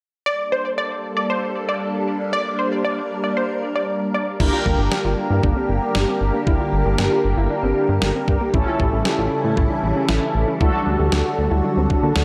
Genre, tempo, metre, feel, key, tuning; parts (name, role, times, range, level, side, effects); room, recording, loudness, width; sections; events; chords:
synth-pop; 116 BPM; 4/4; straight; G dorian; A4 = 440 Hz
unison pluck; second line; 0.3-4.2 s; C5 to D5; -25 LUFS; equal; subtle chorus, tape echo
soft string machine; sustained chords; 0.5-12.2 s; C#3 to Bb4; -27 LUFS; equal; phaser, ensemble chorus
mellow synth brass; accompaniment; 4.4-12.2 s; C#4 to Bb4; -25 LUFS; equal; chorus
soft round pluck; arpeggios; 4.4-12.2 s; Bb3 to G4; -31 LUFS; equal; chorus, tape echo
chorused synth bass; bass; 4.4-12.2 s; G1 to D3; -23 LUFS; equal
clean 12-bit digital drum machine; drums; 4.4-12.2 s; crash cymbal, kick drum, snare drum; -24 LUFS; equal
wet plate reverb, RT60 1.4 s; dreamy mix soaked in reverb; -20 LUFS; mono
0.3-4.4 A section; 4.4-12.2 B section
0.3 Gmadd9; 4.4 Gm; 8.5 A; 10.6 D